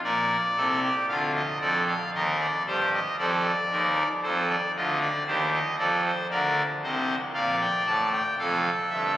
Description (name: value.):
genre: classical, baroque-style 3-part fugue for pipe organ.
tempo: 58 BPM.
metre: 4/4.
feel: straight.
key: Bb major.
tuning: A4 = 439 Hz.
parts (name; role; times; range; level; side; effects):
pipe organ, trumpet; solo; 0.0-9.2 s; F1 to A5; -23 LUFS; equal; none.
room: wet cathedral reverb, RT60 7.3 s.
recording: recorded on a phone in the room, club reverb.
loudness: -23 LUFS.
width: side -13 dB against mid.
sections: 0.0-9.2 A section.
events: none.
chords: 0.0 Bb; 2.1 Cm7/Eb (rootless); 4.2 F7; 6.3 Bb; 8.4 F.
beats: | 0.04 1.09 2.15 3.20 | 4.24 5.28 6.30 7.34 | 8.38.